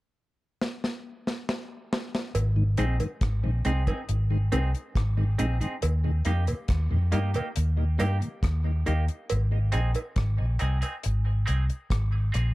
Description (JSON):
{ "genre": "dub reggae", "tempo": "69 BPM", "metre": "4/4", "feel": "straight", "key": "Ab major", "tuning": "A4 = 439 Hz", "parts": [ { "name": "deep reggae drum kit", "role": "drums", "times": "0.6-12.5 s", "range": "hi-hat, kick drum, rim click, snare drum", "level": "-30 LUFS", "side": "equal", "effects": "none" }, { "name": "cowbell", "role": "percussion", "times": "2.3-11.7 s", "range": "none", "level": "-36 LUFS", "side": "right 4 dB", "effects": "high-pass filter on perc, tape echo" }, { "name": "vintage muted fingered electric bass", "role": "bass", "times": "2.4-12.5 s", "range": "Ab1 to G2", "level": "-24 LUFS", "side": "equal", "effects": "none" }, { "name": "mellow tonewheel organ", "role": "accompaniment", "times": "2.6-12.4 s", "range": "Eb2 to Eb4", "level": "-34 LUFS", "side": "left 1 dB", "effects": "slow rotary speaker, high-pass filter, tape echo" }, { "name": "semi-hollow electric guitar", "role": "accompaniment", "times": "2.8-12.5 s", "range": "Bb3 to Ab4", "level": "-35 LUFS", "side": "right 2 dB", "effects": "high-pass filter, tape echo" } ], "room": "small room ambience", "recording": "dark, warm production", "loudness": "-24 LUFS", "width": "side -19 dB against mid", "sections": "0.0-2.3 A section; 2.3-12.5 B section", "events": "drum fill 0.6-2.3; filter sweep 5.8-12.5", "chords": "0.0 N.C.; 2.3 Ab; 5.8 Eb; 9.3 Ab" }